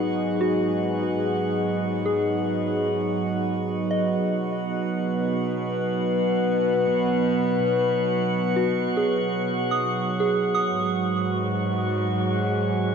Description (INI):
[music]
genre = ambient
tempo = 73 BPM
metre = 4/4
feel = straight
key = B major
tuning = A4 = 438 Hz
[part]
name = warm analog pad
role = sustained chords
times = 0.0-12.9 s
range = F#3 to D#5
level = -24 LUFS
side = equal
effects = chorus
[part]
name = soft synth bell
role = arpeggios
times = 0.0-12.9 s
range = F#4 to D#6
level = -28 LUFS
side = right 1 dB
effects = chorus, tape echo
[part]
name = rich chamber cello section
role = bass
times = 0.0-12.9 s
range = G#2 to B2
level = -32 LUFS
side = left 1 dB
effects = tube saturation
[part]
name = pedal harmonium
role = drone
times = 0.0-12.9 s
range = B3 to F#4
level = -35 LUFS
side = right 3 dB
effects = none
[part]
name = drifting glass-harmonics texture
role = texture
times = 0.0-12.9 s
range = F#4 to F#5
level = -31 LUFS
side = equal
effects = chorus, built-in reverb
[sound]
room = wet lush hall reverb, RT60 3.0 s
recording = none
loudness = -22 LUFS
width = side -6 dB against mid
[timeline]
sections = 0.0-12.9 A section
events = fade-in on cello section 0.0-12.9; fade-in on synth texture 0.0-12.9; fade-out on harmonium 0.0-12.9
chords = 0.0 G#5; 4.2 B; 10.8 G#5